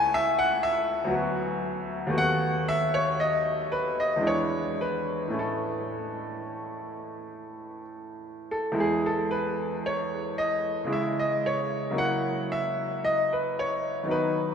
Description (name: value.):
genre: classical, baroque-style suite movement for grand piano.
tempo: 52-60 BPM.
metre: 3/4.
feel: rubato.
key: A major, E major from 8.8 s.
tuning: A4 = 441 Hz.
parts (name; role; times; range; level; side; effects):
bright grand piano; solo; 0.0-14.5 s; C#2 to G#5; -25 LUFS; equal; none.
room: wet cathedral reverb, RT60 7.4 s.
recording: heard from further back in the room.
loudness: -25 LUFS.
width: side -7 dB against mid.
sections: 0.0-8.8 A section; 8.8-14.5 A section.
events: none.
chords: 0.0 A/C#; 1.1 Bm/D; 2.1 B7/D#; 4.2 E7; 5.4 A; 8.8 E; 10.9 C#m; 12.0 F#7/C#.